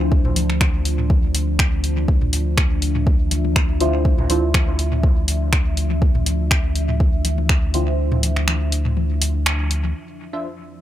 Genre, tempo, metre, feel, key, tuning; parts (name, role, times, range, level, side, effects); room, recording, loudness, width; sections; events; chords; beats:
dub techno; 122 BPM; 4/4; swing 54% on 16ths; D minor; A4 = 439 Hz
deep dark ambient pad; sustained chords; 0.0-10.8 s; F3 to E5; -28 LUFS; equal; chorus, built-in reverb, vintage 12-bit sampler grit, sidechain pumping
deep mellow chord stab; stabs; 0.0-0.3, 3.8-4.5, 7.7-8.2 s; D4 to C5; -24 LUFS; equal; chorus, phaser, sidechain pumping, dub echo
warm sub bass; bass; 0.0-9.9 s; D2; -21 LUFS; equal; sidechain pumping
electronic kick drum; drums; 0.1-7.6 s; -18 LUFS; equal; overdrive
electronic toms; percussion; 0.2-9.9 s; -28 LUFS; left 3 dB; sidechain pumping on toms
deep house drum kit; drums; 0.4-9.8 s; finger snaps, hi-hat; -22 LUFS; equal; overdrive, dub echo
wavetable chord stab; riff; 10.3-10.5 s; D4 to E5; -28 LUFS; equal; sidechain pumping
digital ambience; -16 LUFS; side -12 dB against mid
0.0-10.0 A section
kick drops out 8.0-10.0; band accent 9.5
0.0 Dm9
| 0.12 0.61 1.10 1.59 | 2.08 2.58 3.07 3.56 | 4.05 4.54 5.04 5.53 | 6.02 6.51 7.00 7.49 | 7.99 8.48 8.97 9.46 | 9.95 10.45